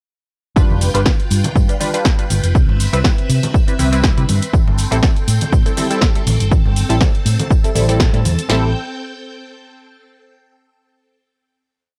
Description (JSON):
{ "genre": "filtered disco house", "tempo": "121 BPM", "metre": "4/4", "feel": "swing 54% on 16ths", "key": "A minor", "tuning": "A4 = 440 Hz", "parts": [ { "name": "funky polysynth comp", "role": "accompaniment", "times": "0.6-8.7 s", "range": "G3 to B4", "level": "-22 LUFS", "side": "equal", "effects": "chorus, phaser, sidechain pumping" }, { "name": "phased string machine", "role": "sustained chords", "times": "0.6-8.7 s", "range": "C4 to A5", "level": "-30 LUFS", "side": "equal", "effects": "ensemble chorus, phaser, vintage 12-bit sampler grit, sidechain pumping" }, { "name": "hollow-body short-scale fingered electric bass", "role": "bass", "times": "0.6-8.7 s", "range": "F1 to C3", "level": "-19 LUFS", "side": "equal", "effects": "sidechain pumping" }, { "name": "punchy analog drum machine", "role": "drums", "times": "0.6-8.6 s", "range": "kick drum, snare drum", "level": "-17 LUFS", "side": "equal", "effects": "none" }, { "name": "punchy analog drum machine", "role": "drums", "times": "0.6-8.5 s", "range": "cabasa, hi-hat, snare drum", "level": "-24 LUFS", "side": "equal", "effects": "sidechain pumping on perc, sidechain pumping on hats" }, { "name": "tambourine and congas", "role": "percussion", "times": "0.6-8.5 s", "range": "none", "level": "-29 LUFS", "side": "equal", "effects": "sidechain pumping on perc" } ], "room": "digital ambience", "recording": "none", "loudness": "-15 LUFS", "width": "mono", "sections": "0.6-8.5 drop; 8.5-10.5 final chord", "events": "drop 0.6-8.5; band accent 8.0", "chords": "0.6 G7; 2.5 Cmaj7; 4.5 Am7", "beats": "| 0.56 1.06 1.56 2.05 | 2.55 3.04 3.54 4.04 | 4.53 5.03 5.52 6.02 | 6.52 7.01 7.51 8.00 | 8.50" }